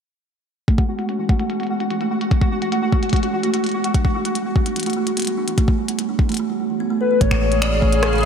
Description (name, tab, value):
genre	IDM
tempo	147 BPM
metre	4/4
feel	straight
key	A major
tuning	A4 = 443 Hz
part	kalimba	arpeggios	0.7-8.3 s	E3 to A4	-22 LUFS	right 5 dB	low-pass filter, tape echo
part	electronic kick drum	drums	0.7-7.9 s	none	-17 LUFS	equal	none
part	glitchy drum kit	drums	0.7-8.3 s	finger snaps, hi-hat, rim click	-26 LUFS	left 1 dB	low-pass filter on hats, low-pass filter on snare, low-pass filter on room
part	pulsing gated texture	texture	0.7-8.3 s	F#4 to F#5	-26 LUFS	left 5 dB	chorus, built-in reverb
part	warbly nostalgic lead	melody	7.0-8.3 s	B4 to D5	-19 LUFS	left 7 dB	chorus, tremolo
part	icy glass pad	sustained chords	7.5-8.3 s	C#3 to G#4	-23 LUFS	right 2 dB	chorus, built-in reverb, sidechain pumping
part	rubbery square bass	bass	7.2-8.3 s	A1	-20 LUFS	equal	none
room	moderate lush hall reverb, RT60 2.1 s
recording	dreamy mix soaked in reverb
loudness	-17 LUFS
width	side -7 dB against mid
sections	0.7-7.2 A section; 7.2-8.3 B section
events	filter sweep on kalimba 0.7-7.2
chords	0.7 Amaj7(no3); 3.9 Emadd9 (rootless); 7.2 Amaj7